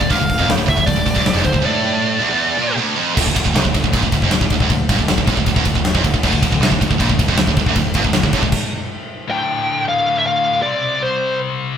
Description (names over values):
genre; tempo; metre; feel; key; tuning
heavy metal; 157 BPM; 4/4; straight; D minor; A4 = 440 Hz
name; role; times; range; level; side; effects
high-gain lead guitar; melody; 0.0-2.8, 9.3-11.4 s; C5 to G5; -18 LUFS; left 1 dB; distortion
heavy high-gain guitar; riff; 0.0-8.5 s; D2 to C3; -20 LUFS; right 9 dB; distortion
high-gain distorted guitar; riff; 0.0-3.2, 6.2-8.5 s; D2 to C3; -24 LUFS; left 1 dB; distortion
scooped high-gain guitar; riff; 0.0-11.8 s; D2 to C4; -23 LUFS; left 4 dB; distortion
growling picked electric bass; bass; 0.0-8.5 s; D1 to C2; -22 LUFS; equal; overdrive
big rock drum kit; drums; 0.0-8.6 s; crash cymbal, hi-hat, kick drum, ride cymbal, snare drum; -18 LUFS; left 1 dB; none
room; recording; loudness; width
moderate stone room reverb, RT60 1.3 s; band playing live in one room; -14 LUFS; side -8 dB against mid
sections
0.0-3.2 A section; 3.2-9.3 B section; 9.3-11.8 C section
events
stop 8.5-9.3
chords
0.0 Dm; 10.6 C5